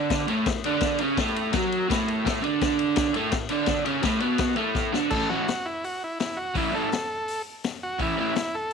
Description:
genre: garage rock duo or trio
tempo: 167 BPM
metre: 4/4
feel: straight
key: A major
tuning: A4 = 439 Hz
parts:
  - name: crunchy overdriven guitar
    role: riff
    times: 0.0-8.3 s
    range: A2 to F#4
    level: -24 LUFS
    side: right 2 dB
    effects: none
  - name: vintage drum kit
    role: drums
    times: 0.1-8.7 s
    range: crash cymbal, hi-hat, kick drum, ride cymbal, snare drum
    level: -29 LUFS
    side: left 4 dB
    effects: none
  - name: overdriven combo organ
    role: melody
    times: 5.1-8.7 s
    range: E4 to A4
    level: -29 LUFS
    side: equal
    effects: none
room: light reverb, small room ambience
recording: 1960s-style stereo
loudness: -23 LUFS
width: side -6 dB against mid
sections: 0.0-5.1 A section; 5.1-8.7 B section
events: drum fill 4.8-5.1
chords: 0.0 A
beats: 0.12 0.47 | 0.83 1.19 1.55 1.90 | 2.26 2.62 2.98 3.34 | 3.69 4.05 4.41 4.77 | 5.13 5.49 5.84 6.20 | 6.56 6.92 7.28 7.64 | 8.00 8.36 8.72

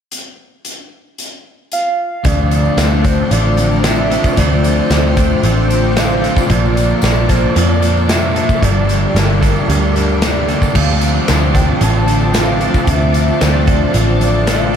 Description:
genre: rock, shoegaze and dream pop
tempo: 113 BPM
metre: 4/4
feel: straight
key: D minor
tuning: A4 = 438 Hz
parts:
  - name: big rock drum kit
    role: drums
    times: 0.1-14.6 s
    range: crash cymbal, hi-hat, kick drum, snare drum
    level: -18 LUFS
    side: equal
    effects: none
  - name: pure sine lead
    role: melody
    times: 1.7-14.8 s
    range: Bb4 to A5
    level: -20 LUFS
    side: right 1 dB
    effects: chorus, diffuse ambient delay
  - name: string machine, full ensemble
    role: sustained chords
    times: 2.2-14.8 s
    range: F4 to D6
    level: -23 LUFS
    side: equal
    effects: ensemble chorus
  - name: direct-recorded clean electric guitar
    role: arpeggios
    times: 2.2-14.8 s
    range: F3 to D4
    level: -26 LUFS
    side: right 6 dB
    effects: none
  - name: thick fuzz guitar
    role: riff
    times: 2.2-14.8 s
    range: G2 to D4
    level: -20 LUFS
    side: left 8 dB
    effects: distortion, lush chorus
  - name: twangy electric guitar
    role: riff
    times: 2.3-14.8 s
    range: G2 to A4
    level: -21 LUFS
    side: right 8 dB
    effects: reverse reverb
  - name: vintage muted picked electric bass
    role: bass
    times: 2.3-14.8 s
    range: G1 to F2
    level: -15 LUFS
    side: equal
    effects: none
  - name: tambourine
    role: percussion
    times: 2.3-14.7 s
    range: none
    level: -36 LUFS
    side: left 14 dB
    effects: none
room: moderate huge ambient reverb, RT60 7.6 s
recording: dreamy mix soaked in reverb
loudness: -11 LUFS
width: side -8 dB against mid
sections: 0.1-2.2 A section; 2.2-14.8 B section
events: none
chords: 0.1 N.C.; 2.2 Dm7; 6.5 Bbmaj7; 8.6 Gmadd9; 10.7 Dm7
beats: | 0.12 0.65 1.18 1.71 | 2.25 2.78 3.31 3.84 | 4.37 4.90 5.43 5.96 | 6.50 7.03 7.56 8.09 | 8.62 9.15 9.69 10.22 | 10.75 11.28 11.81 12.35 | 12.88 13.41 13.94 14.48

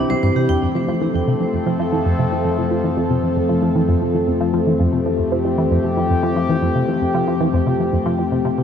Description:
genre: ambient, sequencer-driven space music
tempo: 115 BPM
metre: 4/4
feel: straight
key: F major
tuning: A4 = 437 Hz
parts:
  - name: sweeping resonant pad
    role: sustained chords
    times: 0.0-8.6 s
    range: E3 to A4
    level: -19 LUFS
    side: left 2 dB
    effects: chorus, shimmer reverb
  - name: tight sequenced synth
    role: riff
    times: 0.0-8.6 s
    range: C2 to F3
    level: -20 LUFS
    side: right 1 dB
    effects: chorus, tape echo
  - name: vibraphone with hard mallets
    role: arpeggios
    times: 0.1-0.5 s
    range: G4 to G5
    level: -28 LUFS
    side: right 2 dB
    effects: auto-pan, tape echo, shimmer reverb
  - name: analog drone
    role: bass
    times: 1.8-8.6 s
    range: F2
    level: -27 LUFS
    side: right 1 dB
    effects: chorus
room: wet huge ambient reverb, RT60 9.3 s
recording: none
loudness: -16 LUFS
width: side -8 dB against mid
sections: 0.6-8.6 A section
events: none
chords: 0.0 C; 0.6 F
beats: 0.10 | 0.62 1.14 1.67 2.19 | 2.71 3.23 3.75 4.27 | 4.80 5.32 5.84 6.36 | 6.88 7.40 7.93 8.45

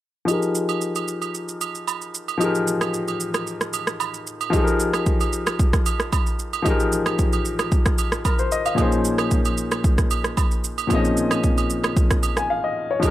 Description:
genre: amapiano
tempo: 113 BPM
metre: 4/4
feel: straight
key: F minor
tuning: A4 = 441 Hz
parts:
  - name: warm grand piano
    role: accompaniment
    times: 0.3-13.1 s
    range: Bb2 to Ab5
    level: -23 LUFS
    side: left 2 dB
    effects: low-pass filter
  - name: deep house drum kit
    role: drums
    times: 0.3-13.1 s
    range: kick drum, rim click, shaker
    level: -21 LUFS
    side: equal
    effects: overdrive
  - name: agogo bells and woodblock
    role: percussion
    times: 0.3-13.1 s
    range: none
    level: -29 LUFS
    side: right 10 dB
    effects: none
room: light reverb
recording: none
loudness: -19 LUFS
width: side -14 dB against mid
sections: 0.3-4.5 A section; 4.5-13.1 B section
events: filter sweep on grand piano 0.3-4.5; kick muted 2.4-4.5; break 12.5-13.0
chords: 0.3 Fm11; 8.8 Bbm11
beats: | 0.28 0.82 1.35 1.88 | 2.41 2.94 3.47 4.00 | 4.53 5.06 5.59 6.13 | 6.66 7.19 7.72 8.25 | 8.78 9.31 9.84 10.37 | 10.90 11.44 11.97 12.50 | 13.03

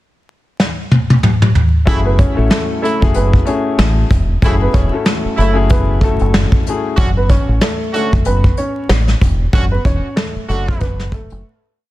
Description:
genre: hip hop, boom-bap hip-hop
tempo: 94 BPM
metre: 4/4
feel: swing 59% on 16ths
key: F# minor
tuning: A4 = 440 Hz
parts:
  - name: soft brush drum kit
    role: drums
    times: 0.6-11.4 s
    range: hi-hat, kick drum, snare drum, toms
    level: -14 LUFS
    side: equal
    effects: soft clipping on snare
  - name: dark concert grand piano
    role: accompaniment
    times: 1.9-7.0 s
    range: A3 to A4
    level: -20 LUFS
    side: left 5 dB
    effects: cassette tape, high-pass filter, low-pass filter
  - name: warm horn section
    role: stabs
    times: 1.9-10.9 s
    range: C#3 to F#4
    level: -24 LUFS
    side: right 2 dB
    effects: high-pass filter, low-pass filter, tape echo
  - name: deep dub fingered electric bass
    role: bass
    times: 1.9-11.4 s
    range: E1 to A1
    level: -16 LUFS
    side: equal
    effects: none
  - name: dark upright piano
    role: melody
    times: 2.1-11.4 s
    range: A3 to C#5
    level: -22 LUFS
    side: right 1 dB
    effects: high-pass filter, low-pass filter
room: small room ambience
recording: dense, heavily limited modern master, vinyl crackle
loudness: -12 LUFS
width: side -16 dB against mid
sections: 0.0-1.9 pickup bar; 1.9-11.9 hook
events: drum fill 0.6-1.9; break 7.0-11.9; fade-out 9.5-11.9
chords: 0.0 N.C.; 1.9 F#m7; 7.0 Dmaj7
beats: 0.59 1.23 | 1.87 2.51 3.15 3.79 | 4.42 5.06 5.70 6.34 | 6.98 7.62 8.25 8.89 | 9.53 10.17 10.81

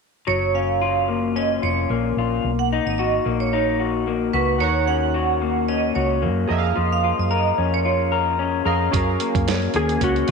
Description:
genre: indie pop, bedroom pop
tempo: 111 BPM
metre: 4/4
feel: swing 55% on 16ths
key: F# major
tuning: A4 = 439 Hz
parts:
  - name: vibraphone with hard mallets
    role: second line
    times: 0.3-8.8 s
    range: A#4 to F#5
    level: -24 LUFS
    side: right 11 dB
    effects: analog chorus, slapback echo
  - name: electric guitar through a small old amp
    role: accompaniment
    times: 0.3-10.3 s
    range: D#3 to A#4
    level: -22 LUFS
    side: left 9 dB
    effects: wide subtle chorus, warbly pitch drift
  - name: hollow-body short-scale fingered electric bass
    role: bass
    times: 0.3-10.3 s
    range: E#1 to F#2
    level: -25 LUFS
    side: right 1 dB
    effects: none
  - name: chorused retro synth keys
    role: accompaniment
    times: 4.6-10.3 s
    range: C#4 to F#5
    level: -27 LUFS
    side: right 12 dB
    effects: tremolo
  - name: dusty soul sampler-style drum kit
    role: drums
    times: 8.9-10.3 s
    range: hi-hat, kick drum, snare drum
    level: -24 LUFS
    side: right 6 dB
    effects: none
  - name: clean lap steel guitar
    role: melody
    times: 9.8-10.3 s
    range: F#4 to G#4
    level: -21 LUFS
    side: left 1 dB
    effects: ensemble chorus, slapback echo
room: moderate echo chamber reverb, RT60 1.4 s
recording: 1960s-style stereo with parts hard left and right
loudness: -18 LUFS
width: side -4 dB against mid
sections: 0.3-8.9 A section; 8.9-10.3 B section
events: none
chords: 0.3 F#maj7; 2.4 Bmaj7; 4.6 D#m7; 6.5 C#6/E#; 8.9 F#maj7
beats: | 0.28 0.82 1.36 1.90 | 2.44 2.98 3.53 4.07 | 4.61 5.15 5.69 6.23 | 6.77 7.31 7.86 8.39 | 8.94 9.48 10.02

